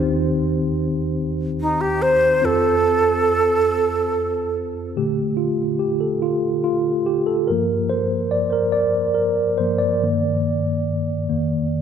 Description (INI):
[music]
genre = gospel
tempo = 47 BPM (dotted quarters)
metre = 6/8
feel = straight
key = Bb major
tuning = A4 = 438 Hz
[part]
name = mellow tine electric piano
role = accompaniment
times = 0.0-11.8 s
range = Eb2 to D5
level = -20 LUFS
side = equal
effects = medium stereo tremolo
[part]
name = breathy hollow jazz flute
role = melody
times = 1.6-4.5 s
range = Eb4 to C5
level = -17 LUFS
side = right 2 dB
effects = tape echo
[sound]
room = wet concert hall reverb, RT60 2.4 s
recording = none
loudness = -18 LUFS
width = side -8 dB against mid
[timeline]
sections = 0.0-5.0 A section; 5.0-11.8 B section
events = tine electric piano solo 5.0-11.8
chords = 0.0 Cm/Eb; 2.4 F; 5.0 Bbmaj7; 7.5 Gm7; 10.0 Gm; 11.3 F7sus4